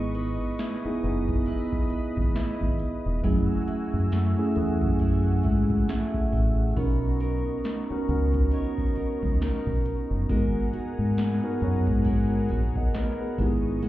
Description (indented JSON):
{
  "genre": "contemporary R&B",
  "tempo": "68 BPM",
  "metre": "4/4",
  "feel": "swing 58% on 16ths",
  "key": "B major",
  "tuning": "A4 = 440 Hz",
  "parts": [
    { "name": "mellow tine electric piano", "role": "accompaniment", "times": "0.0-13.9 s", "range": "A3 to F#5", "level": "-29 LUFS", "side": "equal", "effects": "medium stereo tremolo" },
    { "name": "warm analog pad", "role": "sustained chords", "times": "0.0-13.9 s", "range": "B3 to E6", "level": "-38 LUFS", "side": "equal", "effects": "chorus" },
    { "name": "picked steel-string acoustic guitar", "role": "arpeggios", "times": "0.0-13.9 s", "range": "F#3 to D#5", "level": "-34 LUFS", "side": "right 3 dB", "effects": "ping-pong delay" },
    { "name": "deep dub fingered electric bass", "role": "bass", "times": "0.0-13.9 s", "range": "E1 to G#2", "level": "-26 LUFS", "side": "equal", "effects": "none" },
    { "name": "booming analog drum machine", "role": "drums", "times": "0.1-13.9 s", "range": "hi-hat, kick drum, snare drum", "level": "-27 LUFS", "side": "equal", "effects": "none" }
  ],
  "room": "digital ambience",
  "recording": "heard muffled through a wall, club reverb, EQ",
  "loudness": "-23 LUFS",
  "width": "side -15 dB against mid",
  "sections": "0.0-13.9 A section",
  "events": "none",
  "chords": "0.0 C#m9; 3.2 F#m9; 6.8 Bmaj9; 10.3 G#m9; 13.4 C#m9",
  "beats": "0.59 1.47 2.35 | 3.24 4.12 5.00 5.88 | 6.77 7.65 8.53 9.41 | 10.30 11.18 12.06 12.94 | 13.82"
}